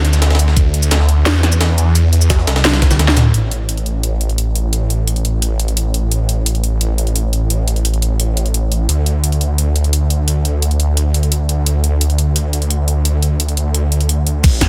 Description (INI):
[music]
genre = dark technical drum and bass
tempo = 173 BPM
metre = 4/4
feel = straight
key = unclear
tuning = A4 = 440 Hz
[part]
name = snarling distorted saw bass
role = bass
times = 0.0-14.7 s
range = A1 to E2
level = -16 LUFS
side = equal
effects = distortion, tube saturation, sidechain pumping
[part]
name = breakbeat sampler-style drum kit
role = drums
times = 0.0-3.2, 14.4-14.7 s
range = hi-hat, snare drum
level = -24 LUFS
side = equal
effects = high-pass filter on hats, high-pass filter on snare
[part]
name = drum and bass drum kit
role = drums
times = 0.0-14.7 s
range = crash cymbal, hi-hat, shaker, snare drum, toms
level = -21 LUFS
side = equal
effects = overdrive
[part]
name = electronic kick drum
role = drums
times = 0.6-2.9, 14.4-14.7 s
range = none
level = -14 LUFS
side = equal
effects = none
[sound]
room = digital ambience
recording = none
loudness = -15 LUFS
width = mono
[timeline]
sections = 0.0-3.3 A section; 3.3-14.4 B section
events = drum fill 2.6-3.3; kick drops out 3.0-3.3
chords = none